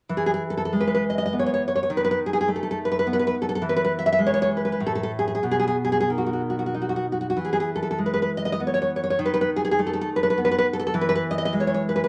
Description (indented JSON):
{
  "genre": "romantic piece for solo classical guitar",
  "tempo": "91-107 BPM",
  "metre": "3/4",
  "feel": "rubato",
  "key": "E major",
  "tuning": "A4 = 438 Hz",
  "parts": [
    { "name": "nylon-string guitar", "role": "solo", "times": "0.1-12.1 s", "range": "A2 to E5", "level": "-24 LUFS", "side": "equal", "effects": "none" }
  ],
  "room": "moderate studio reverb, RT60 0.9 s",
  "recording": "none",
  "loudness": "-24 LUFS",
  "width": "mono",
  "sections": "0.1-12.1 A section",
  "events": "none",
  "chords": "0.1 E; 1.9 B7/D#; 3.6 E; 4.8 N.C.; 5.4 B; 7.4 E; 9.2 B7/D#; 10.9 E",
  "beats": "| 0.09 0.72 1.32 | 1.90 2.48 3.06 | 3.63 4.20 4.79 | 5.42 6.08 6.72 | 7.37 7.99 8.59 | 9.19 9.79 10.37 | 10.94 11.53"
}